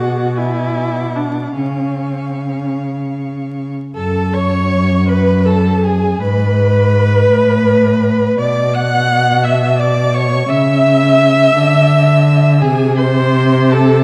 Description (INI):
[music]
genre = classical, slow romantic movement for string quartet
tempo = 49-58 BPM (dotted quarters)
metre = 6/8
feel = rubato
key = F# minor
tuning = A4 = 440 Hz
[part]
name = dark violin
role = melody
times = 0.0-14.0 s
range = G#5 to F#6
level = -27 LUFS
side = equal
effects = none
[part]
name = rich violin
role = second line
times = 0.0-14.0 s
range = G#4 to G#5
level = -22 LUFS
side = equal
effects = none
[part]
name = warm viola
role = accompaniment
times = 0.0-14.0 s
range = C#4 to F#5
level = -20 LUFS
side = equal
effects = none
[part]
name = warm cello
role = bass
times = 0.0-14.0 s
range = F#2 to D3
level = -16 LUFS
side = equal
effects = none
[sound]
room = wet scoring stage reverb, RT60 1.7 s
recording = dark, warm production, vinyl crackle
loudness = -14 LUFS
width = mono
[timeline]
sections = 0.0-4.0 A section; 4.0-14.0 B section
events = none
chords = 0.4 G#dim/B; 1.6 C#; 4.0 F#5; 6.2 G#m; 7.3 Asus2; 8.4 B5; 10.5 C#m; 11.5 Dsus2; 12.6 G#(b9)/B#